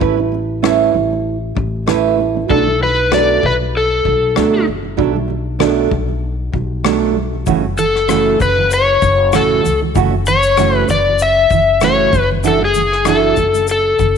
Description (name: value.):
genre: acoustic pop.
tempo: 97 BPM.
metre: 4/4.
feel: swing 55% on 16ths.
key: unclear.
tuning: A4 = 439 Hz.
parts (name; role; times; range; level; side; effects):
fingerpicked steel-string acoustic guitar; accompaniment; 0.0-14.2 s; F#2 to B4; -17 LUFS; right 10 dB; none.
upright bass; bass; 0.0-14.2 s; F#1 to D2; -20 LUFS; left 2 dB; none.
unplugged drum kit; drums; 0.0-14.2 s; kick drum, rim click, shaker; -22 LUFS; left 6 dB; none.
overdriven slide guitar; melody; 2.5-14.2 s; G#4 to E5; -13 LUFS; left 3 dB; none.
room: moderate plate reverb, RT60 1.6 s.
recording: 1960s-style stereo with parts hard left and right.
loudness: -12 LUFS.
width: side -6 dB against mid.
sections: 0.0-14.2 A section.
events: none.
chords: 0.0 Aadd9; 2.5 Bm7; 7.5 F#m7; 12.1 Dadd9/F#.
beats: | 0.02 0.64 1.26 1.88 | 2.50 3.12 3.74 4.36 | 4.98 5.61 6.23 6.85 | 7.47 8.09 8.71 9.33 | 9.96 10.58 11.20 11.82 | 12.44 13.06 13.69.